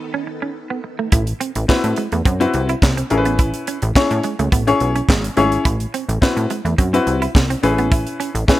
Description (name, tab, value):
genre	early-eighties boogie funk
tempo	106 BPM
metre	4/4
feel	straight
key	unclear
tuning	A4 = 444 Hz
part	phased string machine	sustained chords	0.0-1.1 s	D#3 to A4	-32 LUFS	right 2 dB	ensemble chorus, phaser
part	semi-hollow electric guitar	riff	0.1-8.5 s	G#3 to E4	-26 LUFS	right 6 dB	analog chorus
part	plucky analog bass	bass	1.1-8.5 s	G#1 to A2	-20 LUFS	equal	none
part	tight funk drum kit	drums	1.1-8.6 s	handclaps, hi-hat, kick drum, snare drum	-18 LUFS	equal	none
part	dark baby grand piano	accompaniment	1.7-8.6 s	C4 to C#5	-18 LUFS	left 3 dB	none
room	studio reverb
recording	none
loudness	-15 LUFS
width	side -15 dB against mid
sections	0.0-1.1 A section; 1.1-8.6 B section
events	break 0.0-1.1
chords	0.0 B7; 1.1 Am6; 3.1 Amaj9; 5.7 Am6; 7.6 Amaj9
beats	0.56 | 1.12 1.69 2.25 2.82 | 3.39 3.95 4.52 5.08 | 5.65 6.22 6.78 7.35 | 7.92 8.48